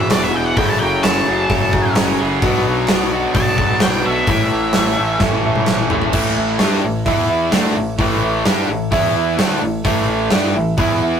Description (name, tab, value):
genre	classic rock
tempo	129 BPM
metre	4/4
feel	straight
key	A major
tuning	A4 = 442 Hz
part	octave-fuzz lead guitar	melody	0.0-5.2 s	D5 to A5	-20 LUFS	left 1 dB	wah, distortion
part	tack piano	accompaniment	0.0-11.2 s	A3 to E5	-24 LUFS	right 3 dB	none
part	cranked stack guitar	riff	0.0-11.2 s	E2 to G4	-22 LUFS	left 4 dB	overdrive
part	crunchy overdriven guitar	riff	0.0-11.2 s	E2 to A4	-23 LUFS	right 4 dB	none
part	overdriven electric guitar	riff	0.0-11.2 s	E2 to G4	-22 LUFS	right 1 dB	none
part	growling fingered electric bass	bass	0.1-11.2 s	E1 to G2	-26 LUFS	equal	overdrive
part	gated 80s drum kit	drums	0.1-10.9 s	crash cymbal, hi-hat, kick drum, snare drum, toms	-19 LUFS	equal	none
part	group handclap	percussion	0.1-5.8 s	none	-31 LUFS	equal	none
room	moderate booth ambience, RT60 0.2 s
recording	rough rehearsal-room recording, tube saturation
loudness	-14 LUFS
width	side -8 dB against mid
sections	0.0-6.1 A section; 6.1-11.2 B section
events	lead electric guitar solo 0.0-6.1; drum fill 5.2-6.1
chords	0.0 E; 0.6 F#madd9; 2.4 Bm; 4.3 A; 7.1 E5; 7.5 A; 8.9 E5; 9.4 A